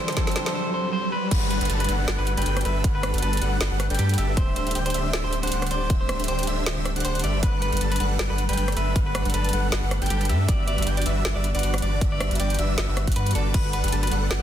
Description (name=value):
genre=future bass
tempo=157 BPM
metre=4/4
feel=swing 55% on 16ths, half-time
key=G major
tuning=A4 = 440 Hz
part: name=electric guitar at the edge of break-up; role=melody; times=0.0-14.2 s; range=G4 to D5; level=-30 LUFS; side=equal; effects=spring reverb, sidechain pumping, tape echo
part: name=bell-like tine electric piano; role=accompaniment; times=0.0-1.1 s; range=G3 to A4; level=-34 LUFS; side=right 2 dB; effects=phaser, sidechain pumping, tape echo
part: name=airy breathy pad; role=sustained chords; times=0.0-14.4 s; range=D3 to A4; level=-36 LUFS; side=left 1 dB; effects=chorus, sidechain pumping
part: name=supersaw chords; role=riff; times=0.0-14.4 s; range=D3 to A5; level=-30 LUFS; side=right 1 dB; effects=sidechain pumping
part: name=riser and downlifter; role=sound effects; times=0.0-4.4 s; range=none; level=-30 LUFS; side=equal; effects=none
part: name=trap drum kit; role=drums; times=0.1-14.4 s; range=crash cymbal, hi-hat, rim click, snare drum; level=-29 LUFS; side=equal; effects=soft clipping on snare, high-pass filter on snare, studio ambience, high-pass filter on hats, high-pass filter on cymbals
part: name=electronic kick drum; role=drums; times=0.2-13.6 s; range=none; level=-23 LUFS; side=equal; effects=studio ambience
part: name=airy dreamy lead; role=arpeggios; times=1.3-14.4 s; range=D5 to A5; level=-34 LUFS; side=equal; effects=chorus, sidechain pumping, tape echo
part: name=saturated sub bass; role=bass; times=1.3-14.4 s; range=D1 to G2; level=-25 LUFS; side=equal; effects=sidechain pumping
part: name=thumb-piano-like synth pluck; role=arpeggios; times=13.5-14.4 s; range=F#4 to F#5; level=-39 LUFS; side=right 2 dB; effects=chorus, sidechain pumping
room=digital ambience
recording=dense, heavily limited modern master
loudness=-21 LUFS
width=side -10 dB against mid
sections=0.0-1.3 A section; 1.3-14.4 B section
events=build-up 0.0-1.3; drum fill 0.0-0.5; riser 0.0-1.3; drop 1.3-14.4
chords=0.0 D7sus4; 1.1 N.C.; 1.3 Gmaj9; 4.4 D7sus4; 7.2 Gmaj9; 10.5 Em7/G; 13.5 Gmaj9